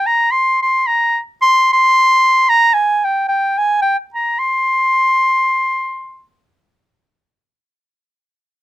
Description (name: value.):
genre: balkan folk.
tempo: free time.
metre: none.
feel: none.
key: unclear.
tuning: A4 = 441 Hz.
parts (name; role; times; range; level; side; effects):
dark clarinet; solo; 0.0-6.3 s; G5 to C6; -12 LUFS; equal; none.
room: little or no reverb.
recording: close, detailed microphones.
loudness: -12 LUFS.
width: side -16 dB against mid.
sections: 0.0-6.8 A section; 6.8-8.6 B section.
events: none.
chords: none.